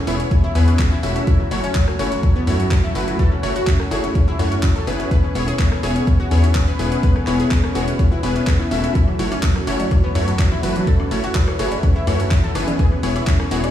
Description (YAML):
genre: progressive house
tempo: 125 BPM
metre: 4/4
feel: straight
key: F# minor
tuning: A4 = 444 Hz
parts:
  - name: warm analog pad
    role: sustained chords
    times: 0.0-13.7 s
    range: A3 to C#5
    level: -26 LUFS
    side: left 1 dB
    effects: chorus, sidechain pumping
  - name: analog pluck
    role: arpeggios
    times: 0.0-13.7 s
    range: F#3 to B4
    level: -26 LUFS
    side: right 1 dB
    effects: chorus, sidechain pumping, digital delay
  - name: supersaw stab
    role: stabs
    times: 0.1-13.6 s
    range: A3 to E5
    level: -24 LUFS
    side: left 2 dB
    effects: sidechain pumping, digital delay
  - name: tight sequencer bass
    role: bass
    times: 0.1-13.7 s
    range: E1 to F#2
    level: -21 LUFS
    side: equal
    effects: sidechain pumping
  - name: deep house drum kit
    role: drums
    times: 0.1-13.7 s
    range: handclaps, hi-hat, ride cymbal, rim click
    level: -29 LUFS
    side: equal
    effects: overdrive
  - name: electronic kick drum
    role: drums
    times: 0.3-13.4 s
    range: none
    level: -16 LUFS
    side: equal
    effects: overdrive
  - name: woodblock, cowbell and congas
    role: percussion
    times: 9.1-13.7 s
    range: none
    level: -29 LUFS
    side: left 3 dB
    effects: sidechain pumping on perc
room: little or no reverb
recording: played on a big sound system in a bare room, large studio reverb, studio reverb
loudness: -16 LUFS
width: side -11 dB against mid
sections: 0.0-13.7 A section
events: none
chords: 0.0 C#m7/E; 1.3 F#m7; 5.1 C#m7/E; 9.0 F#m7; 12.8 C#m7/E